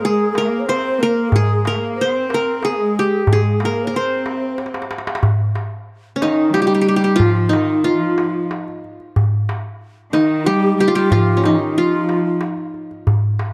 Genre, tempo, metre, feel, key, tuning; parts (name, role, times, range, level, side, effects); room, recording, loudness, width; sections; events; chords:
Arabic maqam ensemble; 92 BPM; 3/4; straight; C maqam kurd; A4 = 440 Hz
qanun; melody; 0.0-13.1 s; Db4 to C5; -20 LUFS; equal
breathy mellow low ney; second line; 0.0-12.4 s; Eb4 to Db5; -26 LUFS; equal
rich chamber cello section; second line; 0.0-12.4 s; Eb3 to C4; -24 LUFS; equal
darbuka; percussion; 0.4-13.5 s; -21 LUFS; equal
small room ambience; dry, close 1970s-style studio recording; -18 LUFS; mono
0.0-5.2 A section; 5.2-13.5 B section
drum fill 4.6-5.2